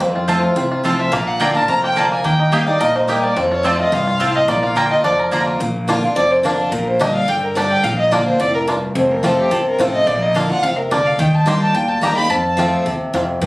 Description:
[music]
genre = bluegrass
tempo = 215 BPM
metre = 4/4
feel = straight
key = Bb major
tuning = A4 = 440 Hz
[part]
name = bluegrass banjo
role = melody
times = 0.0-13.2 s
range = Bb3 to Bb4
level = -21 LUFS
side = right 1 dB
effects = none
[part]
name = dark fiddle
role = melody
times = 0.0-12.9 s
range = G4 to C6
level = -18 LUFS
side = equal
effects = none
[part]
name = picked steel-string acoustic guitar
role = accompaniment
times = 0.0-13.5 s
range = F2 to G4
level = -18 LUFS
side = equal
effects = none
[part]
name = upright bass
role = bass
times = 0.0-13.5 s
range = F1 to G2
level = -25 LUFS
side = equal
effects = none
[part]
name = mandolin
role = stabs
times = 0.3-5.4 s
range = Bb3 to Bb5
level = -18 LUFS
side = right 2 dB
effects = none
[sound]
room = moderate booth ambience, RT60 0.2 s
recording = recorded on a phone in the room, studio reverb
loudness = -14 LUFS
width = side -20 dB against mid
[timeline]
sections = 0.0-5.6 A section; 5.6-13.5 B section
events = fiddle solo 5.6-13.5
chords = 0.0 F; 1.1 Bb; 2.2 Eb; 3.4 F; 4.5 Bb; 6.7 Gm/Bb; 7.8 Bb; 9.0 F; 10.1 Bb; 11.2 Eb; 12.3 F

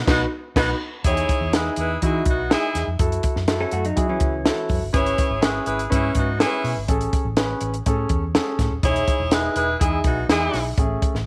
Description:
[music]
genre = uptempo 1960s-style soul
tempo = 123 BPM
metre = 4/4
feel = straight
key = unclear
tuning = A4 = 436 Hz
[part]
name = clear saxophone section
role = second line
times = 0.0-10.6 s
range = G#3 to C#5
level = -26 LUFS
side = equal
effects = none
[part]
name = warm grand piano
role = accompaniment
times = 0.1-11.1 s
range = A3 to B4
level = -28 LUFS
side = equal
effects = none
[part]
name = vintage muted fingered electric bass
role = bass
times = 0.1-11.3 s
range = D#1 to F#3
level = -29 LUFS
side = equal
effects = none
[part]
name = compact cocktail drum kit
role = drums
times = 0.1-11.2 s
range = crash cymbal, hi-hat, kick drum, snare drum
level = -25 LUFS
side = equal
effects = none
[part]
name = vintage hollow-body jazz guitar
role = riff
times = 3.6-4.8 s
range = E3 to A4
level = -29 LUFS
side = equal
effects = none
[sound]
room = light reverb, small room ambience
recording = none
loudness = -21 LUFS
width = mono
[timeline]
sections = 0.0-1.0 A section; 1.0-11.3 B section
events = drum fill 0.0-1.0; band accent 0.1-1.0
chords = 0.0 B; 1.0 Emaj7; 3.0 F#m7; 4.9 C#m7/G#; 6.9 Amaj7; 8.8 Emaj7

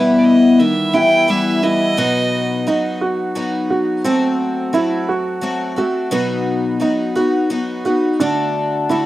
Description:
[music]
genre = acoustic folk duo or small band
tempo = 87 BPM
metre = 3/4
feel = straight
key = unclear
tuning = A4 = 440 Hz
[part]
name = bright fiddle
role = second line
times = 0.0-3.0 s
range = D5 to G5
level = -20 LUFS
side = right 2 dB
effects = none
[part]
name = picked twelve-string acoustic guitar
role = accompaniment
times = 0.0-9.1 s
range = E2 to F#4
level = -16 LUFS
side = left 2 dB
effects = slapback echo
[part]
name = felt-muted upright piano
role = arpeggios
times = 0.0-9.1 s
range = D#3 to F#4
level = -20 LUFS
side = right 3 dB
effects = slapback echo
[sound]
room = little or no reverb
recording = recorded outdoors, with no room sound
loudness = -14 LUFS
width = side -15 dB against mid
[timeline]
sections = 0.0-9.1 A section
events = none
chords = 0.0 Em; 2.0 B; 4.0 F#dim; 6.1 B; 8.2 D

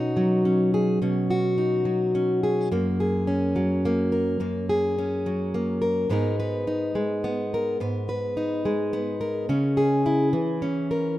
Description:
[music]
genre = folk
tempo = 71 BPM (dotted quarters)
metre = 6/8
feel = straight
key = B major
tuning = A4 = 441 Hz
[part]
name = fingerpicked plugged-in steel-string acoustic guitar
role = solo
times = 0.0-11.2 s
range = F#2 to B4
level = -22 LUFS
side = equal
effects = tape echo
[sound]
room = light reverb, small room ambience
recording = rough home demo mix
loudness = -22 LUFS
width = side -15 dB against mid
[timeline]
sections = 0.0-11.2 A section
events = none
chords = 0.0 Badd9; 2.7 F#; 6.1 G#madd9; 9.5 C#m

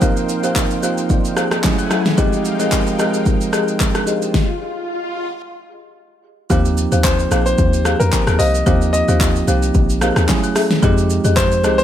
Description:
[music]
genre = amapiano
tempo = 111 BPM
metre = 4/4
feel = swing 55% on 16ths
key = unclear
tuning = A4 = 440 Hz
[part]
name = bell-like tine electric piano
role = accompaniment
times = 0.0-11.8 s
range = F3 to F5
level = -20 LUFS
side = right 5 dB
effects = none
[part]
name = lush unison pad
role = sustained chords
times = 0.0-4.3 s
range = Ab3 to Ab5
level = -27 LUFS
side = left 1 dB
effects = chorus, sidechain pumping
[part]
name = folk marimba with medium mallets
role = stabs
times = 0.0-11.8 s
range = Gb3 to F5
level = -24 LUFS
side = left 5 dB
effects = ping-pong delay
[part]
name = deep house drum kit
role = drums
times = 0.0-11.8 s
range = handclaps, hi-hat, kick drum, rim click, shaker, snare drum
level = -18 LUFS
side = left 1 dB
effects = none
[part]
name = agogo bells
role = percussion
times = 0.0-11.8 s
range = none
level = -32 LUFS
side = left 8 dB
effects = none
[part]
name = swell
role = sound effects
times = 4.1-5.4 s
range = none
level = -28 LUFS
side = left 1 dB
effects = none
[part]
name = deep log drum bass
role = bass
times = 6.5-11.8 s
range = Bb1 to F2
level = -18 LUFS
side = left 1 dB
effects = none
[part]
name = clear grand piano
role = melody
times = 7.0-11.8 s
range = Bb4 to Eb5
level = -20 LUFS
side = left 2 dB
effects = ping-pong delay
[sound]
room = digital ambience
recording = none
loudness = -14 LUFS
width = side -10 dB against mid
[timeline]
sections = 0.0-6.5 A section; 6.5-11.8 B section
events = swell 4.1-6.5; stop 4.3-6.5; drop 6.5-11.8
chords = 0.0 Eb69; 1.6 Gbm9; 2.2 Fm9; 6.5 Eb69; 10.3 Gbm9; 10.8 Fm9

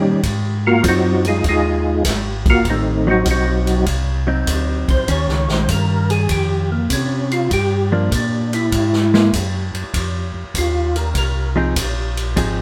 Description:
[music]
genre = soul jazz organ trio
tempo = 99 BPM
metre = 4/4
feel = swing 68% on 8ths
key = unclear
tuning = A4 = 441 Hz
[part]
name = percussive tonewheel organ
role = melody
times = 0.0-11.6 s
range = Eb3 to Db5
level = -21 LUFS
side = equal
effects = slow rotary speaker, chorus vibrato
[part]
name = hollow-body jazz guitar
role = accompaniment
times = 0.0-12.6 s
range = Eb3 to C5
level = -23 LUFS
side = equal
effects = none
[part]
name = mellow tonewheel organ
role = bass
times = 0.0-12.6 s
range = Ab1 to C3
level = -23 LUFS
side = equal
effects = slow rotary speaker
[part]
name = swinging big-band drum kit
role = drums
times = 0.2-12.6 s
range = hi-hat, kick drum, ride cymbal, snare drum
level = -25 LUFS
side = equal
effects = none
[sound]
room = moderate stone room reverb, RT60 1.2 s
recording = band playing live in one room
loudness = -18 LUFS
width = mono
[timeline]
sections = 0.0-12.6 A section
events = tonewheel organ solo 0.0-12.6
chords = 0.2 Ab13; 2.7 Adim7; 5.1 Eb13; 7.5 Gm7; 8.7 Gb9; 9.9 Fm7

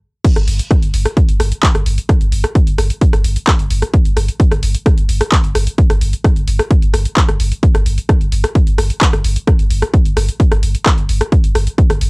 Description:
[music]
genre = driving peak-time techno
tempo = 130 BPM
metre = 4/4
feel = straight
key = unclear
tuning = A4 = 441 Hz
[part]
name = electronic kick drum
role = drums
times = 0.2-11.9 s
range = none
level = -11 LUFS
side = equal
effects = overdrive, cassette tape
[part]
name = techno drum kit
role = drums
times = 0.2-12.1 s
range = crash cymbal, handclaps, hi-hat, rim click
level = -19 LUFS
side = equal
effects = overdrive, cassette tape
[part]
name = warm sub bass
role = bass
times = 0.4-12.1 s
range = G1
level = -16 LUFS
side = equal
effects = tube saturation, sidechain pumping, low-pass filter
[sound]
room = little or no reverb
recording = home recording on cassette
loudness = -11 LUFS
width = side -33 dB against mid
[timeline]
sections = 0.2-12.1 A section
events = stop 0.0; drop 0.2-12.1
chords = none

